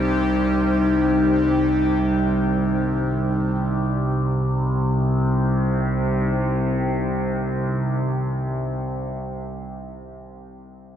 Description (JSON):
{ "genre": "dark ambient drone", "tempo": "free time", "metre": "none", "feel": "none", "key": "C minor", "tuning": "A4 = 438 Hz", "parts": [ { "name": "deep dark ambient pad", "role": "sustained chords", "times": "0.0-9.0 s", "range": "G3 to G5", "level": "-23 LUFS", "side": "equal", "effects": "chorus, built-in reverb" }, { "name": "overtone-sweeping drone", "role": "drone", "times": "0.0-8.8 s", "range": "C2 to C3", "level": "-23 LUFS", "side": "equal", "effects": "chorus, built-in reverb" }, { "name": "bubbling stepped-filter texture", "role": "texture", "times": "0.0-4.3 s", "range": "G3 to G4", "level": "-33 LUFS", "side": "equal", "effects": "chorus, built-in reverb" } ], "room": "wet cathedral reverb, RT60 6.5 s", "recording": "dark, warm production", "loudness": "-19 LUFS", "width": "side -9 dB against mid", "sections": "0.0-4.3 A section; 4.3-8.2 B section", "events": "none", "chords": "0.0 Cm" }